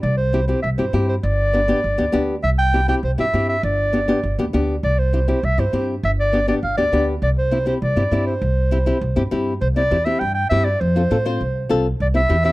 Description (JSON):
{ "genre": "latin", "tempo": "201 BPM", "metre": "4/4", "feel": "straight", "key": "C major", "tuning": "A4 = 439 Hz", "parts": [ { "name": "warm clarinet", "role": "melody", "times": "0.0-12.5 s", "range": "C5 to G5", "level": "-21 LUFS", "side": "right 1 dB", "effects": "none" }, { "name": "upright bass", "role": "bass", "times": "0.0-12.5 s", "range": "G1 to A2", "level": "-20 LUFS", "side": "equal", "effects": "none" }, { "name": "nylon-string guitar", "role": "accompaniment", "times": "0.3-12.5 s", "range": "B3 to C5", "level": "-22 LUFS", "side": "left 2 dB", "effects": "none" } ], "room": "studio reverb", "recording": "dry, close 1970s-style studio recording", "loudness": "-17 LUFS", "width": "side -19 dB against mid", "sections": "0.0-9.6 A section; 9.6-12.5 B section", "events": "none", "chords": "0.0 C; 1.2 G; 2.4 C; 3.6 G; 4.8 C; 6.0 G; 7.2 C; 10.8 F; 12.0 C", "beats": "| 0.04 0.34 0.64 0.94 | 1.24 1.54 1.84 2.14 | 2.44 2.74 3.04 3.34 | 3.64 3.94 4.24 4.54 | 4.83 5.13 5.43 5.73 | 6.03 6.33 6.63 6.93 | 7.22 7.52 7.82 8.12 | 8.42 8.72 9.02 9.31 | 9.61 9.91 10.21 10.51 | 10.81 11.11 11.40 11.70 | 12.00 12.30" }